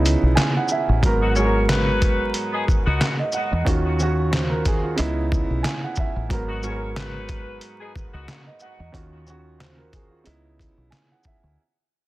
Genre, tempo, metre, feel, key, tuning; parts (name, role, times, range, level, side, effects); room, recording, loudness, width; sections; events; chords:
hip hop, boom-bap hip-hop; 91 BPM; 4/4; swing 55% on 16ths; G# minor; A4 = 441 Hz
dark concert grand piano; accompaniment; 0.0-11.6 s; G#2 to G#5; -24 LUFS; right 2 dB; high-pass filter, low-pass filter
deep dub fingered electric bass; bass; 0.0-11.6 s; G#1 to E2; -23 LUFS; equal
trip hop sampler-style drum kit; drums; 0.1-11.4 s; handclaps, hi-hat, kick drum, shaker, snare drum; -22 LUFS; equal
bright saxophone section; stabs; 1.2-8.4 s; B3 to C#5; -28 LUFS; left 3 dB; high-pass filter, low-pass filter, tape echo
little or no reverb; dense, heavily limited modern master, vinyl crackle; -19 LUFS; side -17 dB against mid
0.0-11.6 A section
break 0.0-1.0; fade-out 0.0-11.6
0.0 C#m9; 1.0 G#m9; 3.7 D#m9; 5.0 C#m9; 6.3 G#m9; 8.9 D#m9; 10.3 C#m9